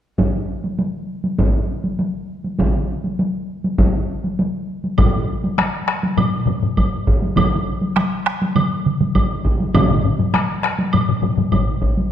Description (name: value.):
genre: japanese traditional, taiko drum ensemble.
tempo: 100 BPM.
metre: 4/4.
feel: straight.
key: none.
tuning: none.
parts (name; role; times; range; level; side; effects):
solo taiko drums; percussion; 0.2-12.1 s; none; -21 LUFS; equal; none.
taiko ensemble; percussion; 0.2-12.0 s; none; -19 LUFS; equal; none.
taiko ensemble; percussion; 5.0-11.7 s; none; -20 LUFS; left 4 dB; none.
woodblock; percussion; 5.0-11.7 s; none; -28 LUFS; right 1 dB; none.
taiko ensemble; percussion; 7.4-9.1 s; none; -21 LUFS; right 3 dB; none.
room: wet recital hall reverb, RT60 1.4 s.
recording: dark, warm production.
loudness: -17 LUFS.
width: side -10 dB against mid.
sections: 0.2-5.0 A section; 5.0-12.1 B section.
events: none.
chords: none.